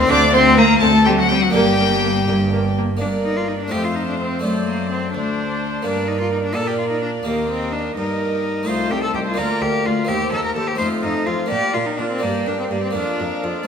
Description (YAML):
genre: classical, baroque-style concerto movement with solo episodes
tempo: 84 BPM (dotted quarters)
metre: 6/8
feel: straight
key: G minor, Bb major from 8.7 s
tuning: A4 = 438 Hz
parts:
  - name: rich cello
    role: melody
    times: 0.0-13.7 s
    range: F#3 to C5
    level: -21 LUFS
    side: left 3 dB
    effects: none
  - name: rich chamber violin section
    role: melody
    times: 0.0-13.7 s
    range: D5 to D6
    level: -26 LUFS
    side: left 4 dB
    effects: none
  - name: warm chamber violin section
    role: second line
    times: 0.0-13.7 s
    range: F#4 to G5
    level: -26 LUFS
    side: left 2 dB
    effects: none
  - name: harpsichord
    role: accompaniment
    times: 0.0-13.7 s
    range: C2 to A4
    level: -23 LUFS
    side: equal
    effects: none
  - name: warm chamber viola section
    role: accompaniment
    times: 0.1-13.7 s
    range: Bb3 to C5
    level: -25 LUFS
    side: right 2 dB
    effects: none
  - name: rich chamber double bass section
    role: bass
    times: 0.1-2.9 s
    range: G1 to D2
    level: -25 LUFS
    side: right 4 dB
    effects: none
  - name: warm chamber cello section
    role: bass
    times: 0.1-13.5 s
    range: C2 to Bb2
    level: -26 LUFS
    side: right 3 dB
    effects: none
room: wet recital hall reverb, RT60 1.6 s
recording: minimal, uncompressed stereo recording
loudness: -16 LUFS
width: side -7 dB against mid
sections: 0.0-3.0 A section; 3.0-13.7 B section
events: none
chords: 0.1 D7; 1.5 Gm; 3.7 F; 4.4 D7/F#; 5.8 Gm; 6.6 Bb; 7.3 Eb; 8.7 F7/C; 9.4 Bb/D; 10.1 Cm7/Eb; 10.8 F7; 11.5 Bb; 12.2 Gm; 13.0 Bb/F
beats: | 0.10 0.82 | 1.55 2.29 | 3.01 3.73 | 4.44 5.14 | 5.85 6.56 | 7.26 7.97 | 8.68 9.38 | 10.09 10.80 | 11.51 12.23 | 12.95